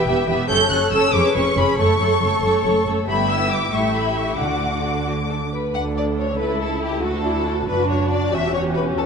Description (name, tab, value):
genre	quick classical-period movement for string orchestra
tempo	93 BPM (dotted quarters)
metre	6/8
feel	straight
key	D major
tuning	A4 = 439 Hz
part	rich studio violin section	melody	0.0-9.1 s	G4 to G6	-23 LUFS	left 3 dB	none
part	warm symphonic violin section	second line	0.0-9.1 s	C#4 to F#5	-24 LUFS	left 3 dB	none
part	warm symphonic viola section	accompaniment	0.0-9.1 s	A3 to A4	-22 LUFS	right 2 dB	none
part	dark studio double bass section	bass	0.1-9.1 s	E1 to D#2	-27 LUFS	right 2 dB	none
part	warm symphonic cello section	bass	0.1-9.1 s	C#2 to D3	-26 LUFS	right 2 dB	none
room	wet concert hall reverb, RT60 1.9 s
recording	nothing above 10.6 kHz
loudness	-17 LUFS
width	side -6 dB against mid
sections	0.0-5.7 A section; 5.7-9.1 A section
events	none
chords	0.0 Em; 0.5 F#m; 1.1 C#7/E#; 1.8 F#m; 3.1 Em/G; 3.7 A5; 4.4 D; 6.4 A/C#; 7.0 D; 8.3 Em